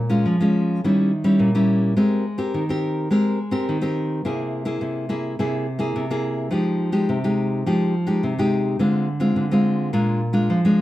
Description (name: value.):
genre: samba.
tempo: 106 BPM.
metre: 4/4.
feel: straight.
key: C minor.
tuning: A4 = 439 Hz.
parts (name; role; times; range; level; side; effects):
nylon-string guitar; solo; 0.0-10.8 s; Bb2 to Bb4; -19 LUFS; equal; none.
room: moderate large studio reverb, RT60 0.9 s.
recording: none.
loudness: -19 LUFS.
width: side -15 dB against mid.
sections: 0.0-10.8 A section.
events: none.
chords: 0.0 Bbm7; 0.8 Eb7b9; 2.0 Abmaj9; 4.2 Caug7; 6.5 Fm9; 8.8 Dm7b5; 9.9 Bb7.